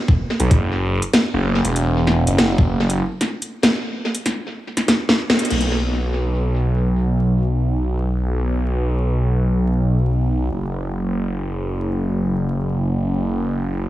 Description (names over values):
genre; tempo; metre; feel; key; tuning
glitch hop; 96 BPM; 4/4; swing 64% on 16ths; unclear; A4 = 439 Hz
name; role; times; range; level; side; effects
electronic kick drum; drums; 0.1-2.7 s; none; -14 LUFS; equal; none
phased detuned saw bass; bass; 0.4-13.9 s; E1 to B1; -18 LUFS; equal; phaser
drum and bass drum kit; drums; 0.4-5.7 s; crash cymbal, hi-hat, snare drum; -19 LUFS; equal; tape echo
room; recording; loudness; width
light reverb; echo-heavy mix, vinyl crackle, small room ambience; -17 LUFS; side -15 dB against mid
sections
0.0-5.5 A section; 5.5-13.9 B section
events
break 3.0-5.5; drum fill 4.9-5.5; band accent 5.3-5.6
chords
none